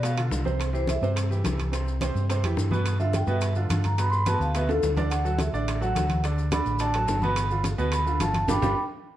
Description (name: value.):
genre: Afro-Cuban jazz.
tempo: 213 BPM.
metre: 4/4.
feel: straight.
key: G major.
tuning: A4 = 440 Hz.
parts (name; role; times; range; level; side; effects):
vibraphone with medium mallets; melody; 0.0-8.7 s; A4 to D6; -28 LUFS; equal; none.
bright upright piano; accompaniment; 0.0-8.7 s; B2 to D5; -30 LUFS; right 4 dB; none.
fingered electric bass; bass; 0.0-8.7 s; G1 to B2; -26 LUFS; equal; none.
bongos; percussion; 0.0-8.7 s; none; -36 LUFS; left 4 dB; none.
congas; percussion; 0.0-8.7 s; none; -33 LUFS; left 1 dB; none.
maracas; percussion; 0.0-8.7 s; none; -42 LUFS; left 6 dB; none.
timbales; percussion; 0.0-8.7 s; none; -35 LUFS; right 5 dB; none.
room: light reverb.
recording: dark, warm production.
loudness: -23 LUFS.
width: side -13 dB against mid.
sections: 0.0-9.2 A section.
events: vibraphone solo 0.0-9.2; drum fill 4.7-5.1, 8.5-9.2; band accent 8.5-9.2.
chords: 0.0 G7 (rootless); 0.6 C; 2.9 G6; 5.1 D6; 7.4 G7.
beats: 0.03 0.32 | 0.60 0.88 1.16 1.44 | 1.73 2.01 2.29 2.57 | 2.85 3.14 3.42 3.70 | 3.98 4.26 4.55 4.83 | 5.11 5.39 5.67 5.96 | 6.24 6.52 6.80 7.08 | 7.37 7.65 7.93 8.21 | 8.49.